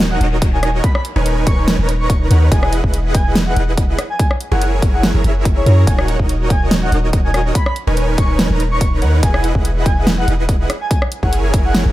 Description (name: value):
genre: future bass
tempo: 143 BPM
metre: 4/4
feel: swing 53% on 16ths, half-time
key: B major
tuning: A4 = 440 Hz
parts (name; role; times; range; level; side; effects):
- dense compressed supersaw; riff; 0.0-11.9 s; D#4 to A#5; -21 LUFS; right 1 dB; sidechain pumping
- long sustained 808-style bass; bass; 0.0-11.9 s; D#1 to F#2; -16 LUFS; equal; sidechain pumping
- big-room dance drum kit; drums; 0.0-11.8 s; hi-hat, rim click, snare drum; -19 LUFS; equal; small room reverb
- downlifter; sound effects; 0.0-2.5 s; none; -36 LUFS; left 2 dB; none
- breathy flute-like synth lead; melody; 0.1-11.7 s; C#5 to C#6; -25 LUFS; equal; analog chorus, sidechain pumping, tape echo
- electronic kick drum; drums; 0.4-11.6 s; none; -16 LUFS; equal; small room reverb
room: little or no reverb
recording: none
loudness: -13 LUFS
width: side -15 dB against mid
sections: 0.0-11.9 A section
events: none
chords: 0.0 D#m7; 0.8 Bmaj9/D#; 2.5 Emaj9; 4.0 F#9; 5.9 D#m7; 7.6 Bmaj9/D#; 9.2 Emaj9; 10.7 F#9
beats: 0.00 0.42 | 0.84 1.26 1.68 2.10 | 2.52 2.94 3.35 3.77 | 4.19 4.61 5.03 5.45 | 5.87 6.29 6.71 7.13 | 7.55 7.97 8.39 8.81 | 9.23 9.65 10.07 10.49 | 10.91 11.33 11.75